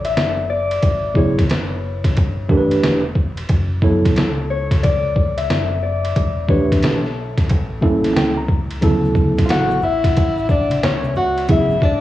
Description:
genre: hip hop, jazz-hop.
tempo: 90 BPM.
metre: 4/4.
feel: swing 64% on 16ths.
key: D major.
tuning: A4 = 436 Hz.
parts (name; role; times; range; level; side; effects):
Celtic harp; melody; 0.0-12.0 s; A4 to F#5; -22 LUFS; left 5 dB; cassette tape.
deep dub fingered electric bass; bass; 0.0-12.0 s; E1 to D2; -25 LUFS; equal; none.
trip hop sampler-style drum kit; drums; 0.0-12.0 s; hi-hat, kick drum, ride cymbal, snare drum; -18 LUFS; equal; overdrive, cassette tape.
tine electric piano; accompaniment; 1.1-11.8 s; C#3 to Bb5; -18 LUFS; right 1 dB; medium stereo tremolo.
egg shaker and congas; percussion; 8.8-12.0 s; none; -27 LUFS; left 1 dB; none.
breathy tenor saxophone; second line; 9.4-12.0 s; C#4 to F#4; -22 LUFS; right 3 dB; none.
room: light reverb, digital ambience.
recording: home recording on cassette, small room ambience.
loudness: -15 LUFS.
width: side -14 dB against mid.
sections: 0.0-12.0 A section.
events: tine electric piano fill 7.5-8.8.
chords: 0.0 Dadd9; 0.8 E13; 2.2 G69; 3.5 F#m7; 6.2 Em7; 7.5 A7b9; 8.8 Dmaj9; 11.5 G#m7b5.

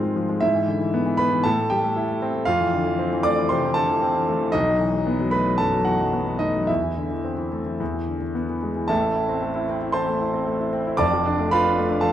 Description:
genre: classical, virtuoso piano study.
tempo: 115 BPM.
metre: 4/4.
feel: rubato.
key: A minor.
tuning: A4 = 440 Hz.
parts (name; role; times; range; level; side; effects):
clear grand piano; solo; 0.0-12.1 s; F1 to D6; -20 LUFS; equal; none.
room: wet recital hall reverb, RT60 1.9 s.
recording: dark, warm production.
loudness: -20 LUFS.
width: side -11 dB against mid.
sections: 0.0-8.9 A section; 8.9-12.1 B section.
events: none.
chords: 0.4 E/G#; 1.5 Am; 2.5 Fmaj7; 4.5 B7; 6.7 Am/E; 7.8 E; 8.9 Am; 11.0 Dm/F.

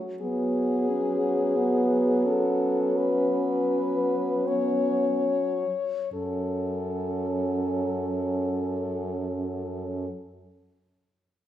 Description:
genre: classical, lyrical piece for horn quartet.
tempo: free time.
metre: none.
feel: none.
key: F# minor.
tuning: A4 = 439 Hz.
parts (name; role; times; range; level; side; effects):
mellow French horn; bass; 0.0-10.1 s; F#2 to F#3; -30 LUFS; right 2 dB; none.
warm French horn; melody; 0.2-10.1 s; G#4 to C#5; -29 LUFS; left 5 dB; none.
warm French horn; second line; 0.2-10.1 s; B3 to C#4; -30 LUFS; right 4 dB; none.
mellow French horn; accompaniment; 0.2-10.1 s; F#3 to C#4; -30 LUFS; left 1 dB; none.
room: wet recital hall reverb, RT60 1.4 s.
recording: recorded in a church or concert hall.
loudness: -24 LUFS.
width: side -11 dB against mid.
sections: 0.0-6.1 A section; 6.1-11.5 B section.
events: slowing down 0.0-6.1.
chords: 0.2 C#5/F#; 6.1 F#m.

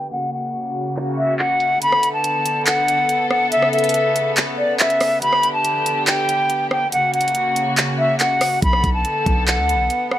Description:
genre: hip hop, trap.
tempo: 141 BPM.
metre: 4/4.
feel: half-time.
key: B minor.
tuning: A4 = 439 Hz.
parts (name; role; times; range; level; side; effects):
silver concert flute; melody; 0.0-10.2 s; D5 to B5; -18 LUFS; left 1 dB; low-pass filter, ping-pong delay.
warm studio string section; sustained chords; 0.0-10.2 s; C#3 to A4; -24 LUFS; left 1 dB; none.
garage drum kit; drums; 0.1-10.2 s; handclaps, hi-hat, kick drum, rim click; -20 LUFS; right 1 dB; none.
warm 808-style bass; bass; 8.6-9.9 s; B1 to D2; -21 LUFS; equal; none.
room: light reverb, studio ambience.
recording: vinyl crackle, low-pass filter.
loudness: -16 LUFS.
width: side -12 dB against mid.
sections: 0.0-1.8 A section; 1.8-10.2 B section.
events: filter sweep 0.0-1.8; kick muted 0.1-1.8, 1.8-8.6.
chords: 0.1 F#; 1.8 Bm7; 3.5 Aadd9; 5.2 G; 6.9 F#; 8.6 Bm7.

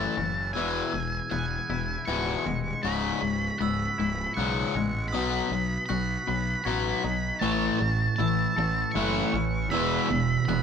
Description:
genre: rock.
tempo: 78 BPM.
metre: 3/4.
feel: straight.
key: C# minor.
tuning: A4 = 440 Hz.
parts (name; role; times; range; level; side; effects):
octave-fuzz lead guitar; melody; 0.0-10.6 s; G#5 to C#6; -31 LUFS; equal; distortion.
glockenspiel with hard plastic mallets; arpeggios; 0.0-10.6 s; C#6 to G#6; -37 LUFS; right 7 dB; none.
twangy electric guitar; arpeggios; 0.0-10.6 s; C#2 to B4; -37 LUFS; equal; tremolo.
overdriven semi-hollow guitar; riff; 0.0-10.6 s; C#2 to B3; -29 LUFS; left 7 dB; none.
fuzz fingered electric bass; bass; 0.0-10.6 s; C#1 to B1; -32 LUFS; right 1 dB; overdrive.
sludgy distorted guitar; riff; 7.4-10.6 s; E2 to A3; -28 LUFS; right 7 dB; overdrive.
room: moderate studio reverb, RT60 0.8 s.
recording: band playing live in one room.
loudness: -25 LUFS.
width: side -7 dB against mid.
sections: 0.0-10.6 A section.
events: build-up 0.0-10.6.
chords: 0.0 A6; 0.5 E; 2.8 C#m7; 5.1 B; 7.4 A6; 9.7 C#m7 (rootless).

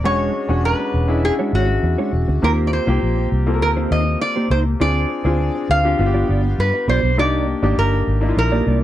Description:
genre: pop.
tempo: 101 BPM.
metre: 4/4.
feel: straight.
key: unclear.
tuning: A4 = 436 Hz.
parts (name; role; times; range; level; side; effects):
metal-body resonator slide guitar; melody; 0.0-8.8 s; F#4 to F5; -22 LUFS; right 1 dB; slapback echo.
bright grand piano; accompaniment; 0.0-8.8 s; G#3 to Bb4; -22 LUFS; left 3 dB; lush chorus.
mellow electric guitar; riff; 0.0-8.8 s; G#3 to D5; -23 LUFS; right 3 dB; ensemble chorus.
vintage muted fingered electric bass; bass; 0.0-8.8 s; E1 to G2; -19 LUFS; equal; none.
room: light reverb.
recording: dry, close 1970s-style studio recording.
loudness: -16 LUFS.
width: side -13 dB against mid.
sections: 0.0-8.8 A section.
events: none.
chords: 0.0 E13; 2.4 Eb6; 4.8 Dm7b5; 6.0 G7; 7.2 Cm9.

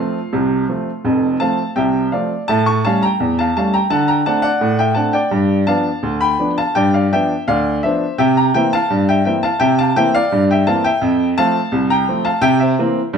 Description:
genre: ragtime piano.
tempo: 84 BPM.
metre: 2/4.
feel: straight.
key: F major.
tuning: A4 = 440 Hz.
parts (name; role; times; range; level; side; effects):
warm baby grand piano; solo; 0.0-13.2 s; F1 to C#6; -14 LUFS; equal; none.
room: wet studio reverb, RT60 0.8 s.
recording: heard from further back in the room.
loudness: -14 LUFS.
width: side -6 dB against mid.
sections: 0.0-2.5 A section; 2.5-13.2 A section.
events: none.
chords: 0.0 F; 2.5 A7; 3.9 D7; 5.3 G7; 8.2 C7; 11.0 F; 12.4 C7.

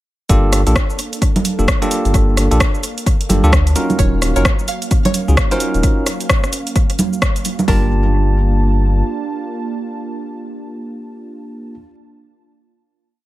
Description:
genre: UK garage, two-step garage.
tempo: 130 BPM.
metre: 4/4.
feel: swing 61% on 16ths.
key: G minor.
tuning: A4 = 440 Hz.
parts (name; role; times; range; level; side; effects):
warm analog pad; sustained chords; 0.3-11.7 s; Gb3 to A5; -28 LUFS; right 2 dB; chorus, sidechain pumping.
bell-like tine electric piano; stabs; 0.3-11.7 s; Bb3 to A5; -21 LUFS; right 1 dB; analog delay.
saturated sub bass; bass; 0.3-9.0 s; Eb1 to D2; -14 LUFS; equal; tube saturation, sidechain pumping.
house drum kit; drums; 0.3-7.8 s; hi-hat, kick drum; -16 LUFS; equal; none.
house drum kit; drums; 0.3-7.7 s; cabasa, congas, hi-hat, rim click; -19 LUFS; right 2 dB; analog delay.
string-like resonator pluck; melody; 4.0-11.7 s; Bb4 to F5; -26 LUFS; right 1 dB; chorus, phaser, tape echo.
room: digital ambience.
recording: echo-heavy mix.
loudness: -13 LUFS.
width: side -16 dB against mid.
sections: 0.3-7.7 drop; 7.7-11.4 final chord.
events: drop 0.3-7.7.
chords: 0.3 Gm9; 3.8 Ebm9; 7.7 Gm9.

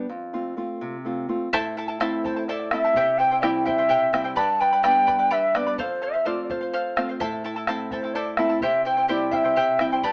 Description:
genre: andean folk, Andean ensemble.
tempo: 85 BPM (dotted quarters).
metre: 6/8.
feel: straight.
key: A minor.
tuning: A4 = 441 Hz.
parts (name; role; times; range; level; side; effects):
nylon-string guitar; accompaniment; 0.0-10.1 s; F2 to F4; -31 LUFS; equal; none.
charango; accompaniment; 1.5-10.1 s; E4 to B5; -30 LUFS; equal; none.
bombo; percussion; 1.5-10.1 s; none; -32 LUFS; equal; none.
mellow quena; melody; 2.2-10.1 s; C5 to A5; -24 LUFS; equal; none.
room: moderate studio reverb, RT60 0.7 s.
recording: band playing live in one room, small speaker sound.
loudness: -23 LUFS.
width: mono.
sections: 0.0-1.5 A section; 1.5-10.1 B section.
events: charango solo 0.0-1.5.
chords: 0.1 F; 1.5 Am; 2.9 C; 4.4 G; 5.8 F; 7.2 Am; 8.6 C.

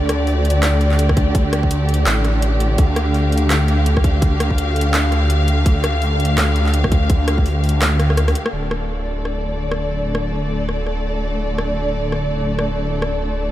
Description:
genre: half-time drum and bass.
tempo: 167 BPM.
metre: 4/4.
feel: swing 58% on 16ths, half-time.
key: D minor.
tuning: A4 = 436 Hz.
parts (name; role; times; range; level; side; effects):
rich studio string section; sustained chords; 0.0-13.5 s; D3 to F5; -22 LUFS; equal; sidechain pumping.
phased detuned saw bass; bass; 0.0-13.5 s; D1 to D2; -18 LUFS; equal; phaser.
drum and bass drum kit; drums; 0.1-13.1 s; handclaps, hi-hat, rim click; -24 LUFS; equal; overdrive, small room ambience.
electronic kick drum; drums; 1.1-7.4 s; none; -17 LUFS; equal; overdrive, small room ambience.
room: light reverb.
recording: none.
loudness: -15 LUFS.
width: side -13 dB against mid.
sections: 0.0-8.5 A section; 8.5-13.5 B section.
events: drop 0.0-8.5; drum fill 8.0-8.5.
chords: 0.0 D5.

